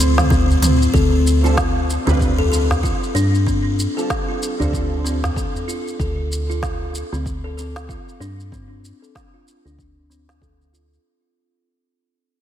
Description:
organic downtempo; 95 BPM; 4/4; swing 59% on 16ths; D dorian; A4 = 436 Hz
granular cloud pad; sustained chords; 0.0-0.9 s; A3 to C5; -29 LUFS; left 3 dB; built-in reverb, sidechain pumping
buzzing kalimba; arpeggios; 0.0-10.9 s; C4 to A4; -23 LUFS; left 2 dB; low-pass filter, tape echo
woody FM bass; bass; 0.0-11.0 s; D2 to G2; -19 LUFS; equal; sidechain pumping
organic electronic drum kit; drums; 0.0-11.0 s; hi-hat, shaker, snare drum, toms; -25 LUFS; right 1 dB
udu; percussion; 0.2-5.6 s; -25 LUFS; right 1 dB
electronic kick drum; drums; 0.3-10.6 s; -23 LUFS; equal
felt-muted upright piano; accompaniment; 1.4-6.3 s; D3 to B4; -28 LUFS; right 3 dB; ensemble chorus, sidechain pumping, tape echo
moderate lush hall reverb, RT60 2.9 s; dreamy mix soaked in reverb; -16 LUFS; side -10 dB against mid
0.9-11.0 A section
fade-out 0.9-11.0; filter sweep on FM bass 0.9-11.0; filter sweep on kalimba 0.9-11.0
0.0 F/D; 0.9 Dm7
0.31 | 0.94 1.57 2.20 2.83 | 3.47 4.10 4.73 5.36 | 5.99 6.62 7.26 7.89 | 8.52 9.15 9.78 10.41

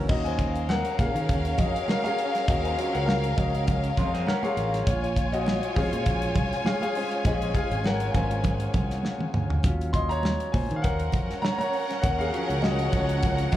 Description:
lush 1970s-style soul; 100 BPM; 4/4; swing 54% on 16ths; A4 = 441 Hz
clear baby grand piano; accompaniment; 0.0-13.6 s; E3 to C6; -29 LUFS; left 2 dB; slapback echo
electric guitar through a small old amp; riff; 0.0-0.1, 4.0-4.8, 13.5-13.6 s; Ab3 to Db5; -33 LUFS; right 2 dB; slapback echo
fingered electric bass; bass; 0.0-13.6 s; Ab1 to Eb3; -28 LUFS; equal
warm studio violin section; second line; 0.1-13.6 s; Db4 to Ab5; -30 LUFS; equal; slapback echo
damped 70s drum kit; drums; 0.1-13.6 s; crash cymbal, hi-hat, kick drum, snare drum, toms; -27 LUFS; equal
congas; percussion; 0.1-13.6 s; -35 LUFS; right 4 dB; slapback echo
small room reverb; live gig heard through the venue's PA, club ambience; -23 LUFS; side -13 dB against mid
0.1-13.6 A section
grand piano solo 0.1-13.6; drum fill 9.0-9.6
0.1 Ebm9; 4.9 Bbm7; 9.6 Ebm9
| 0.10 0.69 1.29 1.88 | 2.48 3.08 3.67 4.27 | 4.87 5.46 6.06 6.66 | 7.25 7.85 8.45 9.04 | 9.64 10.24 10.84 11.43 | 12.03 12.63 13.23

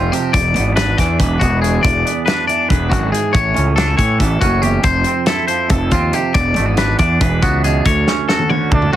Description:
math rock and midwest emo; 280 BPM (eighths); 7/8; straight; A4 = 440 Hz
twangy electric guitar; accompaniment; 0.0-9.0 s; D2 to F#4; -20 LUFS; right 9 dB; lush chorus
twangy electric guitar; arpeggios; 0.0-9.0 s; F4 to D5; -18 LUFS; left 5 dB
fuzz fingered electric bass; bass; 0.0-8.9 s; E1 to A2; -17 LUFS; equal; overdrive
loose indie drum kit; drums; 0.1-9.0 s; hi-hat, kick drum, snare drum, toms; -18 LUFS; equal
clear trumpet; melody; 8.7-9.0 s; D4; -17 LUFS; right 1 dB
little or no reverb; heavily compressed radio sound, multiband compression; -13 LUFS; side -12 dB against mid
0.0-9.0 A section
drum fill 8.1-9.0
0.3 E7; 3.3 A7; 4.9 Fmaj7; 6.4 E7; 7.9 Dmaj7
0.13 | 0.34 0.56 0.77 0.99 1.20 1.42 1.63 | 1.84 2.06 2.27 2.49 2.70 2.92 3.13 | 3.35 3.56 3.78 3.99 4.21 4.42 4.64 | 4.85 5.07 5.28 5.50 5.71 5.92 6.14 | 6.35 6.57 6.78 7.00 7.21 7.43 7.64 | 7.86 8.07 8.29 8.50 8.71 8.93

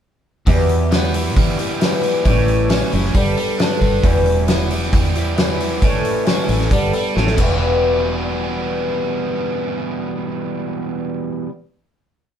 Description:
folk rock and heartland rock; 135 BPM; 4/4; straight; E dorian; A4 = 441 Hz
picked twelve-string acoustic guitar; accompaniment; 0.5-11.6 s; E2 to A4; -21 LUFS; left 2 dB
biting overdriven guitar; riff; 0.5-11.5 s; E2 to G4; -23 LUFS; right 3 dB
fingered electric bass; bass; 0.5-11.5 s; E1 to E3; -20 LUFS; equal
loose indie drum kit; drums; 0.5-7.5 s; crash cymbal, hi-hat, kick drum, snare drum; -19 LUFS; equal
light reverb; band playing live in one room; -15 LUFS; side -9 dB against mid
0.5-7.6 verse; 7.6-11.2 final hit
drum fill 7.2-7.6
0.5 Em; 2.3 A7; 3.1 Gadd9; 4.0 Em; 5.8 A7; 6.7 Gadd9; 7.2 A; 7.4 Em
| 0.47 0.92 1.36 1.81 | 2.25 2.70 3.15 3.60 | 4.04 4.49 4.93 5.38 | 5.82 6.27 6.71 7.16 | 7.60 8.04 8.49 8.93 | 9.38 9.82 10.27 10.71

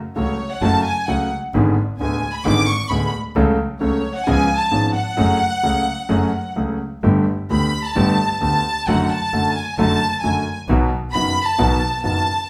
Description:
tango; 131 BPM; 4/4; rubato; F# minor; A4 = 440 Hz
warm studio violin section; second line; 0.2-12.5 s; C#5 to D6; -24 LUFS; equal
warm concert grand piano; accompaniment; 0.2-12.2 s; D1 to A4; -22 LUFS; equal
warm double bass; bass; 0.2-12.2 s; F#1 to D2; -27 LUFS; equal
wet large studio reverb, RT60 0.9 s; band playing live in one room; -19 LUFS; mono
0.0-12.5 A section
violin section solo 0.0-12.5
0.0 F#m; 1.5 G#dim; 3.4 F#m/C#; 4.3 C#7; 5.2 F#madd9; 7.0 Gadd9; 8.9 D/F#; 10.7 B
0.16 0.62 1.08 | 1.54 2.00 2.46 2.91 | 3.36 3.82 4.27 4.72 | 5.18 5.64 6.10 6.57 | 7.03 7.50 7.96 8.42 | 8.88 9.33 9.78 10.23 | 10.69 11.14 11.59 12.05

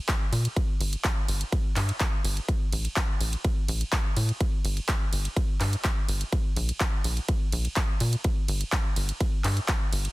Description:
progressive house; 125 BPM; 4/4; straight; G minor; A4 = 444 Hz
electronic kick drum; drums; 0.1-9.8 s; -26 LUFS; equal
house drum kit; drums; 0.1-10.1 s; handclaps, hi-hat, ride cymbal; -31 LUFS; equal; overdrive
tight sequencer bass; bass; 0.3-10.1 s; G1 to Bb2; -26 LUFS; equal; sidechain pumping
little or no reverb; dense, heavily limited modern master; -24 LUFS; side -19 dB against mid
0.0-10.1 A section
0.09 | 0.56 1.04 1.52 2.00 | 2.48 2.96 3.44 3.92 | 4.41 4.88 5.37 5.84 | 6.33 6.80 7.29 7.76 | 8.24 8.72 9.21 9.69

